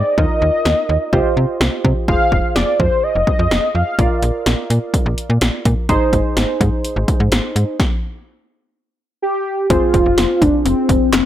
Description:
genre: synth-pop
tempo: 126 BPM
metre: 4/4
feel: straight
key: F dorian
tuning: A4 = 440 Hz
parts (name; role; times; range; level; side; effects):
- warm velvety synth lead; melody; 0.0-4.2, 9.2-11.3 s; C4 to F5; -17 LUFS; left 1 dB; chorus, tape echo
- warm analog keys; accompaniment; 0.0-11.3 s; C4 to D5; -22 LUFS; right 2 dB; chorus
- slap-like FM bass; bass; 0.0-11.2 s; F1 to C3; -18 LUFS; equal; none
- punchy analog drum machine; drums; 0.2-11.2 s; handclaps, hi-hat, kick drum, snare drum; -18 LUFS; equal; none
room: light reverb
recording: none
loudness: -14 LUFS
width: side -12 dB against mid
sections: 0.0-2.1 A section; 2.1-9.7 B section; 9.7-11.3 C section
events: stop 7.8-9.7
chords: 0.2 Ebsus2; 1.1 Csus4; 2.1 Fm; 4.0 Bb; 5.9 Ab; 7.8 N.C.; 9.7 Fm

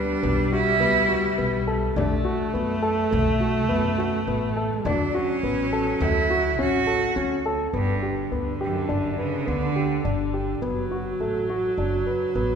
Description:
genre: contemporary instrumental, chamber music in an uneven meter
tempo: 104 BPM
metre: 5/4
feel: straight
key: G lydian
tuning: A4 = 437 Hz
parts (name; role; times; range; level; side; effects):
- bright cello; melody; 0.0-10.1 s; F#2 to F#4; -25 LUFS; right 4 dB; none
- warm viola; second line; 0.0-12.6 s; D3 to A3; -27 LUFS; equal; none
- dark grand piano; arpeggios; 0.0-12.6 s; A3 to B4; -27 LUFS; left 1 dB; none
- upright bass; bass; 0.0-12.6 s; F#1 to F#2; -29 LUFS; equal; none
- frame drum; percussion; 0.2-7.3 s; none; -34 LUFS; left 3 dB; none
room: wet scoring stage reverb, RT60 2.1 s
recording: recorded in a church or concert hall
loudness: -21 LUFS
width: side -7 dB against mid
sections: 0.0-7.7 A section; 7.7-12.6 B section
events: none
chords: 0.0 Bm7; 4.9 Dmaj7; 7.7 G; 10.6 D6/F# (rootless)

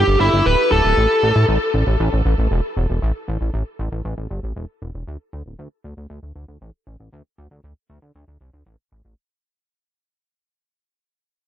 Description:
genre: synthwave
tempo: 117 BPM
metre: 4/4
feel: straight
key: unclear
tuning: A4 = 440 Hz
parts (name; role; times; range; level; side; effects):
- smooth overdriven lead guitar; melody; 0.0-1.4 s; E4 to B4; -18 LUFS; equal; ping-pong delay
- chorused synth bass; bass; 0.0-9.1 s; D1 to A2; -19 LUFS; equal; tube saturation
room: moderate huge ambient reverb, RT60 7.5 s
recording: dreamy mix soaked in reverb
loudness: -16 LUFS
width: side -11 dB against mid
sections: 0.0-9.2 A section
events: fade-out 0.0-9.2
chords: 0.0 Dsus24; 1.0 A5; 5.1 D5

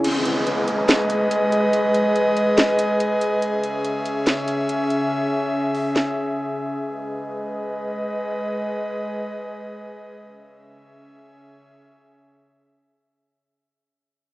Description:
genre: hip hop, atmospheric cloud-rap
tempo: 142 BPM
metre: 4/4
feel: half-time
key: C# minor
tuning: A4 = 445 Hz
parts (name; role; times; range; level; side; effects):
- airy breathy pad; sustained chords; 0.0-13.5 s; C#3 to E5; -21 LUFS; equal; chorus
- house drum kit; drums; 0.0-6.1 s; crash cymbal, hi-hat, snare drum; -21 LUFS; equal; none
- downlifter; sound effects; 0.0-3.4 s; none; -28 LUFS; equal; none
room: moderate plate reverb, RT60 1.6 s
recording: rough home demo mix, small speaker sound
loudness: -20 LUFS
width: side -17 dB against mid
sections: 0.0-13.6 A section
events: break 0.0-6.8; fade-out 2.7-13.6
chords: 0.0 G#m; 3.4 C#m; 6.8 G#m; 10.2 C#m

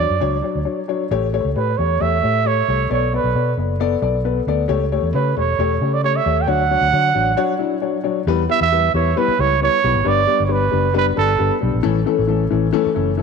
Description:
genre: uptempo 1960s-style soul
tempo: 134 BPM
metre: 4/4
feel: straight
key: unclear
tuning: A4 = 440 Hz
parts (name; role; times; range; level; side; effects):
- breathy trumpet; melody; 0.0-11.6 s; A4 to G5; -19 LUFS; right 9 dB; none
- dark upright piano; accompaniment; 0.0-13.2 s; E3 to D5; -20 LUFS; left 9 dB; none
- vintage muted fingered electric bass; bass; 0.0-13.2 s; E1 to D3; -21 LUFS; equal; none
room: moderate echo chamber reverb, RT60 2.4 s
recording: 1960s-style stereo with parts hard left and right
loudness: -16 LUFS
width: side -5 dB against mid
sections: 0.0-1.1 A section; 1.1-8.3 B section; 8.3-13.2 C section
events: break 0.7-1.1, 7.4-8.3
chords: 0.0 Dmaj7; 1.1 A7; 2.9 Bm7; 4.7 A7; 6.5 Dmaj7; 8.3 Em; 10.1 G; 11.8 A

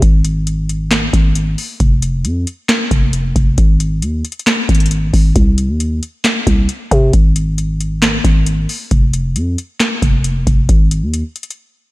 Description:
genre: hip hop, trap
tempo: 135 BPM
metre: 4/4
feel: half-time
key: unclear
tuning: A4 = 440 Hz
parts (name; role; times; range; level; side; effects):
- growling 808-style bass; bass; 0.0-11.2 s; F1 to C3; -14 LUFS; equal; none
- booming analog drum machine; drums; 0.0-11.6 s; handclaps, hi-hat, kick drum, snare drum; -14 LUFS; equal; none
room: light reverb, digital ambience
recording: none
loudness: -12 LUFS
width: side -19 dB against mid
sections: 0.0-11.9 A section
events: break 11.6-11.9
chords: none

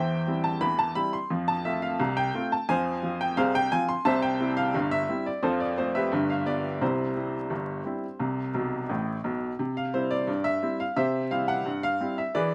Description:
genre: ragtime piano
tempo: 87 BPM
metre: 2/4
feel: straight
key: C major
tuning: A4 = 440 Hz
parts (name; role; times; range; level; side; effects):
- clear upright piano; solo; 0.0-12.5 s; G1 to C6; -27 LUFS; equal; none
room: light reverb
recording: recorded outdoors, with no room sound, vinyl crackle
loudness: -27 LUFS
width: mono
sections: 0.0-9.6 A section; 9.6-12.5 A section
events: upright piano fill 8.5-9.6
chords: 0.0 C/E; 1.3 F; 2.7 Fm; 4.1 C; 5.4 F; 6.1 G7; 6.8 C

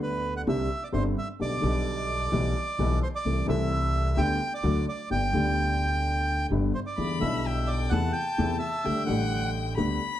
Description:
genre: tango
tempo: 129 BPM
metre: 4/4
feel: rubato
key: G major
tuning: A4 = 441 Hz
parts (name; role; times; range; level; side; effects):
- bandoneon; melody; 0.0-9.5 s; B4 to G5; -30 LUFS; right 2 dB; none
- warm upright piano; accompaniment; 0.0-10.0 s; G1 to A4; -29 LUFS; left 2 dB; none
- upright bass; bass; 0.0-10.0 s; G1 to E2; -29 LUFS; equal; none
- warm violin; second line; 7.0-10.2 s; G5 to B5; -33 LUFS; left 6 dB; none
room: moderate large studio reverb, RT60 0.8 s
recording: dark, warm production, lossy compression artefacts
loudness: -25 LUFS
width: side -12 dB against mid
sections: 0.0-10.2 A section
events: none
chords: 0.5 Csus2; 1.4 G/B; 2.3 Em/B; 3.3 Am/C; 4.2 G/D; 4.6 D; 5.1 G; 7.0 Em7; 7.9 Am/E; 8.8 Dsus4

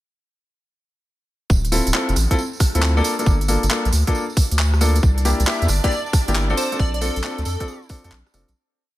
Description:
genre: UK garage, two-step garage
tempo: 136 BPM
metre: 4/4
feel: swing 67% on 16ths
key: unclear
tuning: A4 = 443 Hz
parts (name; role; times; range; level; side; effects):
- saturated sub bass; bass; 1.5-8.5 s; D1 to F2; -19 LUFS; equal; none
- electronic kick drum; drums; 1.5-8.0 s; none; -18 LUFS; equal; none
- tambourine; percussion; 1.5-8.5 s; none; -30 LUFS; right 4 dB; none
- garage drum kit; drums; 1.6-8.5 s; handclaps, hi-hat, rim click; -25 LUFS; equal; none
- warm baby grand piano; stabs; 1.7-8.5 s; Bb3 to A4; -24 LUFS; left 1 dB; dub echo
- warm symphonic violin section; sustained chords; 5.0-8.6 s; D4 to D5; -33 LUFS; equal; vintage 12-bit sampler grit, sidechain pumping
- plucky unison lead; melody; 5.5-7.8 s; A4 to E5; -27 LUFS; equal; none
room: digital ambience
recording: none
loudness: -17 LUFS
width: side -16 dB against mid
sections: 1.5-8.6 drop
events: drop 1.5-8.6; fade-out 6.2-8.6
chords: 1.5 Dm7; 3.0 Gm9; 5.0 C7; 6.6 Bbmaj7

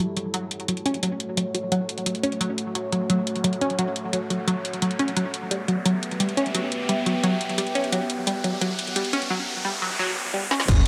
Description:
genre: dark technical drum and bass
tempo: 174 BPM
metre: 4/4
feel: straight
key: unclear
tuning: A4 = 440 Hz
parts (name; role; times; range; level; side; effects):
- deep dark ambient pad; sustained chords; 0.0-10.9 s; A3 to F#5; -33 LUFS; equal; chorus, built-in reverb, sidechain pumping
- unison pluck; arpeggios; 0.0-10.6 s; F#3 to C#4; -28 LUFS; equal; cassette tape, sidechain pumping, digital delay
- riser, noise sweep and impact; sound effects; 1.5-10.9 s; none; -34 LUFS; equal; none
- drum and bass drum kit; drums; 0.2-10.9 s; crash cymbal, hi-hat, snare drum; -30 LUFS; equal; high-pass filter on hats, high-pass filter on snare, high-pass filter on cymbals, high-pass filter on room
- snarling distorted saw bass; bass; 10.7-10.9 s; F#1; -22 LUFS; equal; distortion, overdrive, sidechain pumping
- electronic hi-hat; drums; 10.7-10.9 s; none; barely audible; none; none
- electronic kick drum; drums; 10.7-10.8 s; none; -22 LUFS; equal; none
room: moderate plate reverb, RT60 1.4 s, digital ambience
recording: high-pass filter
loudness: -25 LUFS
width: mono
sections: 0.0-10.7 A section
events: build-up 0.0-10.7; filter sweep on synth arpeggio sound 0.0-10.7; filter sweep 0.0-10.7; riser 1.5-10.7; noise sweep 9.3-10.7; drum fill 10.5; impact 10.7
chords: 0.0 F#m; 5.2 Em

